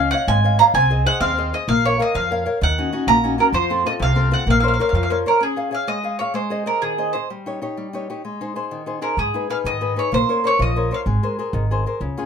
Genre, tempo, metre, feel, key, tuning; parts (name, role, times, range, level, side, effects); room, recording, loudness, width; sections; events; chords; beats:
italian folk, Italian serenade; 128 BPM (dotted quarters); 6/8; straight; Bb minor; A4 = 440 Hz
bowl-back mandolin; melody; 0.0-11.0 s; Ab4 to Bb5; -19 LUFS; right 3 dB
nylon-string guitar; accompaniment; 0.0-12.3 s; C3 to F5; -22 LUFS; left 3 dB
upright bass; bass; 0.0-5.2, 9.2-12.1 s; Ab1 to Ab2; -22 LUFS; equal
moderate small room reverb, RT60 0.6 s; minimal, uncompressed stereo recording; -17 LUFS; side -7 dB against mid
0.0-5.4 A section; 5.4-12.3 B section
0.0 Dbadd9; 0.7 Ab/C; 1.7 Bbm; 2.6 Ebm7; 3.5 F; 4.5 Bbmadd9; 5.4 Db; 6.4 Ab; 7.3 Eb7/G; 8.2 Ab; 9.2 Abm; 10.1 Bbmadd9; 11.1 Abadd9
0.28 | 0.74 1.21 | 1.68 2.15 | 2.61 3.08 | 3.54 4.00 | 4.47 4.94 | 5.41 5.88 | 6.35 6.83 | 7.29 7.76 | 8.23 8.71 | 9.18 9.66 | 10.13 10.60 | 11.07 11.54 | 12.02